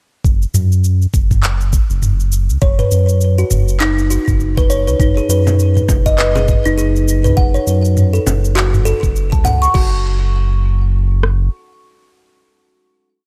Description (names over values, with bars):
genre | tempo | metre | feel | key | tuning
organic downtempo | 101 BPM | 4/4 | swing 58% on 16ths | unclear | A4 = 440 Hz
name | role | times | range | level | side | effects
round analog bass | bass | 0.2-11.5 s | F#1 to F#2 | -17 LUFS | equal | sidechain pumping
afro-pop drum kit | drums | 0.2-11.4 s | kick drum, rim click | -17 LUFS | equal | none
afro-pop drum kit | drums | 0.3-9.9 s | crash cymbal, handclaps, shaker, toms | -22 LUFS | equal | none
kalimba | arpeggios | 2.6-10.0 s | D#4 to C#6 | -20 LUFS | equal | digital delay
frame drum | percussion | 5.5-9.6 s | none | -25 LUFS | equal | none
room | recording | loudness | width
digital ambience | none | -14 LUFS | mono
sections
0.2-9.7 groove; 9.7-12.1 final chord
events
none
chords
0.2 F#5; 2.6 Bsus2/F#; 5.0 G#m/F#; 7.4 F#m; 9.7 N.C.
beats
| 0.24 0.84 1.43 2.02 | 2.62 3.21 3.81 4.40 | 5.00 5.59 6.18 6.78 | 7.37 7.96 8.56 9.15 | 9.75 10.34 10.94